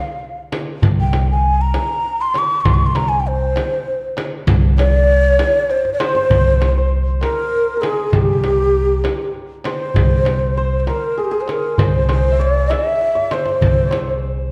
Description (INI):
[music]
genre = Persian modal ensemble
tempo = 66 BPM (dotted quarters)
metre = 6/8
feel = straight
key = C dastgah shur, C dastgah homayun from 6.3 s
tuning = A4 = 440 Hz
[part]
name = breathy mellow ney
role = melody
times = 0.0-14.2 s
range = G4 to Db6+47c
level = -20 LUFS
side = equal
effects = none
[part]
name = frame drum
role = percussion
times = 0.5-14.1 s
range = none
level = -26 LUFS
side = equal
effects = none
[part]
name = tombak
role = percussion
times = 0.5-14.3 s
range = none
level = -24 LUFS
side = equal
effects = none
[part]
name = upright bass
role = bass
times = 0.8-14.5 s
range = C2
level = -20 LUFS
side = equal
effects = none
[part]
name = santur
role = second line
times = 6.0-14.5 s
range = G4 to E5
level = -28 LUFS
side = equal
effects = none
[sound]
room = wet recital hall reverb, RT60 1.6 s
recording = dark, warm production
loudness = -17 LUFS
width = mono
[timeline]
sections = 0.0-6.3 A section; 6.3-14.5 B section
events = drum fill 5.7-6.3, 13.0-13.6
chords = none